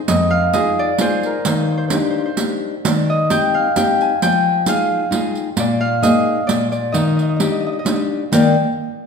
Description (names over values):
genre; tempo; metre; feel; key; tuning
italian folk, Italian serenade; 131 BPM; 3/4; straight; Eb major; A4 = 442 Hz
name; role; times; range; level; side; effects
Celtic harp; melody; 0.0-8.6 s; Bb4 to Ab5; -19 LUFS; equal; none
nylon-string guitar; accompaniment; 0.1-8.6 s; F2 to D5; -18 LUFS; left 2 dB; none
riq; percussion; 0.1-8.6 s; none; -22 LUFS; right 4 dB; none
room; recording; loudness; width
wet recital hall reverb, RT60 1.4 s; minimal, uncompressed stereo recording; -15 LUFS; side -6 dB against mid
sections
0.0-8.3 A section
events
none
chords
0.1 Fm7; 1.5 Ebmaj7; 2.8 Cm/Eb; 4.2 Fm7; 5.6 Bb7sus4; 6.5 N.C.; 6.9 Ebmaj7; 8.3 Eb5